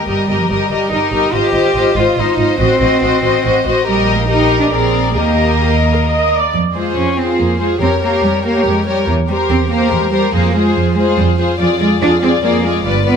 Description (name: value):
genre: quick classical-period movement for string orchestra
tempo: 143 BPM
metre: 3/4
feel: rubato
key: Eb major, F minor from 6.5 s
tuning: A4 = 440 Hz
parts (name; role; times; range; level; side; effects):
- warm studio violin section; melody; 0.0-13.2 s; C5 to Eb5; -20 LUFS; left 5 dB; none
- dark studio violin section; second line; 0.0-13.2 s; Ab4 to C5; -19 LUFS; left 5 dB; none
- warm studio viola section; accompaniment; 0.0-13.2 s; F4 to Eb5; -18 LUFS; equal; none
- warm studio cello section; bass; 0.0-13.2 s; E3 to G4; -17 LUFS; right 2 dB; none
- warm studio double bass section; bass; 0.1-13.2 s; G1 to F2; -18 LUFS; right 3 dB; none
room: light reverb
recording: close, detailed microphones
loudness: -12 LUFS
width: side -7 dB against mid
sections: 0.0-6.5 A section; 6.5-13.2 B section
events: none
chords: 0.1 Eb/G; 1.3 Fm7/Ab; 2.6 Adim7; 3.9 Eb/Bb; 4.7 Bb7; 5.2 Eb; 6.5 Fm; 7.8 Gm7b5/F; 9.1 C7/E; 10.3 Fm; 11.6 Ddim/F